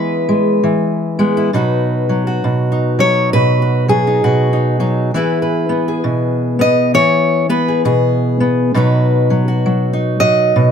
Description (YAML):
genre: folk, solo fingerstyle acoustic guitar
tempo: 66 BPM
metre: 4/4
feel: swing 62% on 8ths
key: B major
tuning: A4 = 441 Hz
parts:
  - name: fingerpicked steel-string acoustic guitar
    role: solo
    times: 0.0-10.7 s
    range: B2 to D#5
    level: -12 LUFS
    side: equal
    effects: none
room: moderate small room reverb, RT60 0.5 s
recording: none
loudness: -12 LUFS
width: side -7 dB against mid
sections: 0.0-1.5 A section; 1.5-10.7 B section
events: none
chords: 0.0 C#m7/E (rootless); 1.5 B; 5.1 E; 8.8 B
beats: 0.64 | 1.54 2.44 3.34 4.24 | 5.14 6.04 6.95 7.85 | 8.75 9.65 10.55